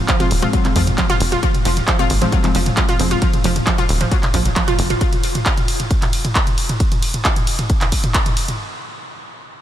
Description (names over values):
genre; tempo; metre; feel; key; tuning
driving peak-time techno; 134 BPM; 4/4; straight; F phrygian; A4 = 440 Hz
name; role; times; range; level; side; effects
tight sequencer bass; bass; 0.0-4.9 s; Eb1 to F2; -19 LUFS; equal; sidechain pumping
analog pluck; riff; 0.1-5.0 s; F3 to F4; -22 LUFS; right 1 dB; chorus, tube saturation, sidechain pumping, ping-pong delay
electronic kick drum; drums; 0.1-8.2 s; none; -19 LUFS; equal; none
punchy analog drum machine; drums; 0.1-8.6 s; handclaps, hi-hat, ride cymbal, toms; -20 LUFS; equal; none
wavetable chord stab; stabs; 0.2-3.2 s; F3 to C4; -25 LUFS; left 2 dB; sidechain pumping, ping-pong delay
room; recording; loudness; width
light reverb, digital ambience; none; -15 LUFS; side -11 dB against mid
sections
0.0-8.6 A section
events
drop 0.0-8.6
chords
0.0 Fm